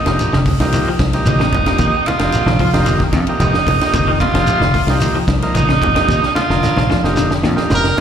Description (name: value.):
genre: afrobeat.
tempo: 112 BPM.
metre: 4/4.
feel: straight.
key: unclear.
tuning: A4 = 440 Hz.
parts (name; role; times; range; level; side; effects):
growling tenor saxophone; melody; 0.0-7.1 s; Eb4 to F4; -18 LUFS; right 3 dB; slapback echo.
combo organ; accompaniment; 0.1-8.0 s; F3 to G5; -21 LUFS; right 2 dB; slapback echo.
electric guitar at the edge of break-up; arpeggios; 0.1-7.7 s; Bb2 to F3; -23 LUFS; left 7 dB; lush chorus, slapback echo.
fingered electric bass; bass; 0.1-8.0 s; F1 to F2; -18 LUFS; equal; none.
tight funk drum kit; drums; 0.1-8.0 s; hi-hat, kick drum, ride cymbal, snare drum; -20 LUFS; equal; none.
congas; percussion; 0.2-8.0 s; none; -21 LUFS; right 1 dB; none.
shekere; percussion; 0.2-8.0 s; none; -24 LUFS; right 1 dB; none.
brilliant trumpet; melody; 7.7-8.0 s; Bb4; -15 LUFS; right 2 dB; none.
room: light reverb, studio ambience.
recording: live gig heard through the venue's PA, recital hall reverb.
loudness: -12 LUFS.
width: side -8 dB against mid.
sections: 0.0-8.0 A section.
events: tenor saxophone solo 0.0-8.0; drum fill 6.1-8.0; transistor combo organ fill 7.4-8.0.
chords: 0.0 F9sus4.